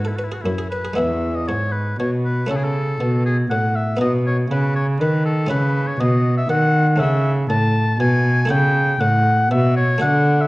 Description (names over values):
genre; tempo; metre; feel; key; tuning
classical, baroque-style sonata movement with continuo; 119 BPM; 3/4; straight; E major, A major from 7.0 s; A4 = 439 Hz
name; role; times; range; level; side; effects
warm oboe; melody; 0.0-10.5 s; E4 to A5; -22 LUFS; left 1 dB; none
buff-stop harpsichord; accompaniment; 0.0-10.5 s; E2 to B4; -26 LUFS; equal; none
dark cello; bass; 0.0-10.5 s; E2 to D#3; -18 LUFS; equal; none
room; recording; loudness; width
wet recital hall reverb, RT60 1.7 s; worn, warbling old tape, cassette tape, warbly pitch drift; -16 LUFS; side -20 dB against mid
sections
1.0-10.5 A section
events
none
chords
0.0 E; 2.5 A; 4.0 B; 5.5 C#m; 7.0 A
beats
0.44 | 0.97 1.48 1.99 | 2.50 3.00 3.51 | 4.01 4.51 5.01 | 5.51 6.00 6.50 | 7.00 7.50 8.00 | 8.51 9.01 9.51 | 10.02